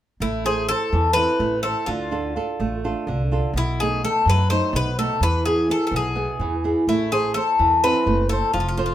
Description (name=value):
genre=greek folk, Greek bouzouki band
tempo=252 BPM (eighths)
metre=7/8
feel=straight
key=A harmonic minor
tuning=A4 = 441 Hz
part: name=Greek bouzouki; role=melody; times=0.2-8.9 s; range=E4 to C5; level=-21 LUFS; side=left 2 dB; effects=none
part: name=flamenco guitar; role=accompaniment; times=0.2-8.9 s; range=B2 to C5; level=-24 LUFS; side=right 2 dB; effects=none
part: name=upright bass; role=bass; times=0.2-8.9 s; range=F1 to F#2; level=-24 LUFS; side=equal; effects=none
room=moderate studio reverb, RT60 0.5 s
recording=minimal, uncompressed stereo recording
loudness=-19 LUFS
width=side -12 dB against mid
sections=0.2-8.9 A section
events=none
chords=0.2 Am; 1.9 Dm; 3.5 B7; 5.2 E; 6.9 Am